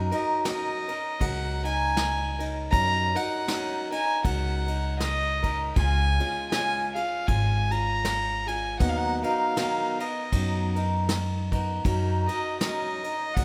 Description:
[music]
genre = acoustic folk duo or small band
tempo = 79 BPM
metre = 4/4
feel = swing 57% on 8ths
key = F# major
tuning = A4 = 440 Hz
[part]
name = picked acoustic archtop guitar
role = accompaniment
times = 0.0-13.4 s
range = C#3 to A#4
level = -32 LUFS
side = equal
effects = none
[part]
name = upright bass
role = bass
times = 0.0-13.4 s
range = G#1 to F#2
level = -30 LUFS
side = equal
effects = none
[part]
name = warm fiddle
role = melody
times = 0.1-13.4 s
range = D#5 to A#5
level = -31 LUFS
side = equal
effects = none
[part]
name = soft brush drum kit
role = drums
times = 0.1-13.4 s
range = kick drum, ride cymbal, snare drum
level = -34 LUFS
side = equal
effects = none
[sound]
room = light reverb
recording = close, detailed microphones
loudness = -26 LUFS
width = mono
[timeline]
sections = 0.0-13.4 A section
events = none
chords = 0.0 F#6; 5.8 C#; 8.8 Bmaj7/D#; 11.8 F#6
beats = 0.45 1.21 1.97 | 2.73 3.48 4.24 5.00 | 5.76 6.52 7.28 8.04 | 8.80 9.56 10.32 11.09 | 11.85 12.61 13.37

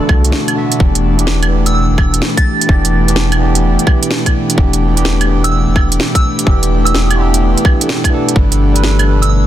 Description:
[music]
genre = future garage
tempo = 127 BPM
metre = 4/4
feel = swing 66% on 16ths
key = E minor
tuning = A4 = 437 Hz
[part]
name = bright tine electric piano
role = accompaniment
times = 0.0-9.5 s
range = D3 to E5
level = -18 LUFS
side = right 2 dB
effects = phaser, sidechain pumping, digital delay
[part]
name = airy breathy pad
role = sustained chords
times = 0.0-9.5 s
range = B2 to G4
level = -18 LUFS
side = left 1 dB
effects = chorus, vintage 12-bit sampler grit, sidechain pumping
[part]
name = backwards swelling texture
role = texture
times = 0.0-0.8 s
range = A5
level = -32 LUFS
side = left 2 dB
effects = none
[part]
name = warm sub bass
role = bass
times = 0.1-9.4 s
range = E1 to C2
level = -14 LUFS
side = equal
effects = sidechain pumping
[part]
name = electronic kick drum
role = drums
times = 0.1-8.5 s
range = none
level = -12 LUFS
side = equal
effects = overdrive
[part]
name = organic electronic drum kit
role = drums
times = 0.1-9.3 s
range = claves, hi-hat, snare drum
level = -18 LUFS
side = right 2 dB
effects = overdrive
[part]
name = soft synth bell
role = melody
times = 1.7-9.4 s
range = E6 to A6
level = -22 LUFS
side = right 3 dB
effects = chorus, phaser, vintage 12-bit sampler grit, digital delay
[sound]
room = little or no reverb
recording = dense, heavily limited modern master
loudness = -10 LUFS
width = side -12 dB against mid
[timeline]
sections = 0.8-9.5 A section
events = break 0.3-0.8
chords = 0.0 D; 0.8 Em7; 8.4 Gadd9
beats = 0.33 | 0.80 1.27 1.75 2.22 | 2.69 3.16 3.63 4.11 | 4.58 5.05 5.53 6.00 | 6.47 6.94 7.42 7.89 | 8.36 8.83 9.30

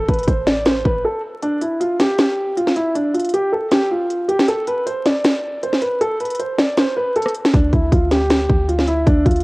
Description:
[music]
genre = hip hop, trap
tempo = 157 BPM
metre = 4/4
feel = half-time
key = D dorian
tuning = A4 = 440 Hz
[part]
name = dark baby grand piano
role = melody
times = 0.0-9.4 s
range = D4 to D5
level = -19 LUFS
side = equal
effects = cassette tape
[part]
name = clean 808-style bass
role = bass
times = 0.0-1.0, 7.5-9.4 s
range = A1 to D2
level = -22 LUFS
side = equal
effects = none
[part]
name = trap drum kit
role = drums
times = 0.1-9.4 s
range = hi-hat, kick drum, rim click, snare drum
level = -17 LUFS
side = equal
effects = none
[sound]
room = light reverb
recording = home recording on cassette, vinyl crackle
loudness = -15 LUFS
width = side -24 dB against mid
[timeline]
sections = 0.0-9.4 A section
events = break 1.0-1.4; kick muted 1.4-7.5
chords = 0.0 A5; 1.4 N.C.; 7.5 Dm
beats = 0.28 0.66 1.04 | 1.42 1.81 2.19 2.57 | 2.95 3.33 3.72 4.10 | 4.48 4.86 5.25 5.63 | 6.01 6.39 6.78 7.16 | 7.54 7.92 8.30 8.69 | 9.07

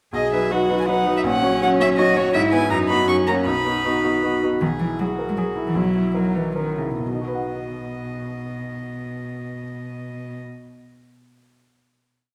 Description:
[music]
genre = quick classical-period movement for piano trio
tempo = 134-167 BPM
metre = 3/4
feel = rubato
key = B major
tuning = A4 = 439 Hz
[part]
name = warm violin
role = melody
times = 0.1-10.4 s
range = C#4 to C#6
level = -28 LUFS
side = equal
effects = none
[part]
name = rich cello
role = second line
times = 0.1-10.4 s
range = B2 to G#4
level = -27 LUFS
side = equal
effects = none
[part]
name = clear baby grand piano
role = accompaniment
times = 0.1-11.0 s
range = A#1 to F#5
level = -24 LUFS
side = equal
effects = none
[sound]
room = wet scoring stage reverb, RT60 1.7 s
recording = none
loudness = -21 LUFS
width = mono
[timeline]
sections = 0.1-4.6 A section; 4.6-7.0 coda; 7.0-9.6 final chord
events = slowing down 4.0-7.0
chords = 0.1 B; 1.3 F#/A#; 2.4 E/G#; 2.7 B/F#; 3.1 F#; 3.5 B; 4.6 E/B; 5.8 F#7/B; 7.0 B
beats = | 0.14 0.52 0.89 | 1.26 1.63 1.99 | 2.35 2.71 3.08 | 3.46 3.85 4.23 | 4.61 4.99 5.37 | 5.76 6.15 6.57 | 7.00 7.44 7.87 | 8.31 8.74 9.18

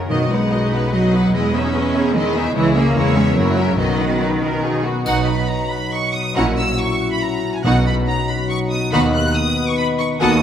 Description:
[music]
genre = classical, dramatic, fast romantic movement for symphony orchestra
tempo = 138-150 BPM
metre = 3/4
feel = straight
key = B major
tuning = A4 = 440 Hz
[part]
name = rich symphonic violin section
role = melody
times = 0.0-10.4 s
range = E4 to F#6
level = -25 LUFS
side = left 1 dB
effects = none
[part]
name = concert harp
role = arpeggios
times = 0.0-10.4 s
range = E2 to B5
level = -24 LUFS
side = left 6 dB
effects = none
[part]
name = clear symphonic cello section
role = bass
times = 0.0-10.4 s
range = D#2 to C#4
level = -21 LUFS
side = right 2 dB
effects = none
[part]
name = clear studio violin section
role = second line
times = 0.1-10.4 s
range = E4 to F#5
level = -25 LUFS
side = left 1 dB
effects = none
[part]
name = clear symphonic viola section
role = accompaniment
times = 0.1-10.4 s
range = F#3 to F#4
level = -23 LUFS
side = right 1 dB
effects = none
[part]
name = clear symphonic double bass section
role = bass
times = 0.1-10.4 s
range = A#1 to F#2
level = -24 LUFS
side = right 3 dB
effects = none
[part]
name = timpani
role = percussion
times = 0.1-0.7, 3.8-4.4, 7.6-8.2 s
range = B2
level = -25 LUFS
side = equal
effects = none
[part]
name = mellow French horn section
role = sustained chords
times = 5.1-10.4 s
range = F#3 to E4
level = -23 LUFS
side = left 1 dB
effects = none
[part]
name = triangle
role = percussion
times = 5.1-5.9 s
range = none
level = -36 LUFS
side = left 1 dB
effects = none
[sound]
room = wet scoring stage reverb, RT60 1.9 s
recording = none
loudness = -16 LUFS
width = side -9 dB against mid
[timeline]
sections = 0.0-5.1 A section; 5.1-10.4 B section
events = none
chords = 0.1 B; 1.3 Emaj7; 2.6 C#m; 3.0 C#m/E; 3.4 F#7; 3.8 B; 6.4 F#7/A#; 7.6 B; 8.9 B/D#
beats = | 0.10 0.52 0.93 | 1.34 1.75 2.15 | 2.56 2.96 3.37 | 3.79 4.21 4.63 | 5.05 5.49 5.92 | 6.35 6.78 7.21 | 7.64 8.07 8.50 | 8.92 9.35 9.78 | 10.21

